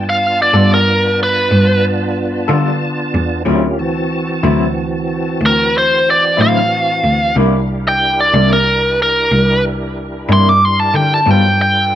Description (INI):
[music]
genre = slow blues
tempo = 62 BPM (dotted quarters)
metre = 12/8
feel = straight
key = unclear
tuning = A4 = 440 Hz
[part]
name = biting lead guitar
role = melody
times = 0.0-12.0 s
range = Bb4 to D6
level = -13 LUFS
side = equal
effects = overdrive, plate reverb
[part]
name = bright tonewheel organ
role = sustained chords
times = 0.0-12.0 s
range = E3 to A5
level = -21 LUFS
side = right 1 dB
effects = slow rotary speaker, chorus vibrato
[part]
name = clear cello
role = bass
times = 0.0-12.0 s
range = C2 to D3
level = -16 LUFS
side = equal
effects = none
[part]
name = electric guitar through a small old amp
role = accompaniment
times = 0.5-11.5 s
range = C3 to A4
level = -18 LUFS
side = left 4 dB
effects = tremolo
[sound]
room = light reverb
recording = none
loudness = -11 LUFS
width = side -11 dB against mid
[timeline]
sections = 0.0-12.0 A section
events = none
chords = 0.0 G9; 3.5 D9; 7.4 C9; 11.3 G9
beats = 0.54 1.51 2.49 | 3.46 4.44 5.41 6.39 | 7.36 8.34 9.31 10.29 | 11.26